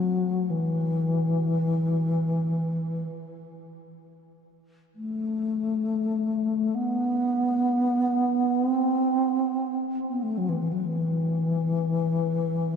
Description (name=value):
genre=world meditative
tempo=free time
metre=none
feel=none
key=unclear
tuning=A4 = 439 Hz
part: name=mellow bass flute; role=solo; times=0.0-12.8 s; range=E3 to C4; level=-24 LUFS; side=left 1 dB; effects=diffuse ambient delay
room=wet huge ambient reverb, RT60 5.1 s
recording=dark, warm production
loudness=-23 LUFS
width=side -6 dB against mid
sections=0.0-12.8 A section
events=none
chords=none